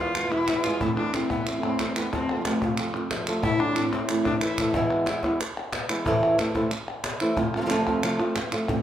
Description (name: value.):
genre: flamenco.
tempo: 183 BPM.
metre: 4/4.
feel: straight.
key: A harmonic minor.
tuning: A4 = 442 Hz.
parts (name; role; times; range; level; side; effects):
flamenco guitar; melody; 0.0-8.7 s; E2 to B4; -26 LUFS; right 1 dB; none.
rich cello; second line; 0.0-4.7 s; A3 to F4; -28 LUFS; left 3 dB; none.
flamenco guitar; stabs; 0.0-4.5, 7.4-8.8 s; E2 to F4; -30 LUFS; right 5 dB; none.
palmas hand claps; percussion; 0.2-8.8 s; none; -32 LUFS; equal; none.
cajon; percussion; 0.5-8.8 s; none; -33 LUFS; left 3 dB; none.
room: moderate large studio reverb, RT60 1.1 s.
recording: close, detailed microphones.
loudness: -23 LUFS.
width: side -10 dB against mid.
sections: 0.0-4.7 A section; 4.7-8.8 B section.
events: cello solo 0.0-4.7; drum fill 3.8-4.7.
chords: 0.0 E; 0.8 Am/E; 2.1 F; 3.4 Am; 4.7 E; 6.1 Am/E; 7.4 F.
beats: 0.16 0.49 | 0.82 1.14 1.47 1.80 | 2.12 2.45 2.78 3.11 | 3.44 3.76 4.09 4.42 | 4.75 5.08 5.40 5.73 | 6.06 6.39 6.72 7.05 | 7.38 7.71 8.04 8.37 | 8.70.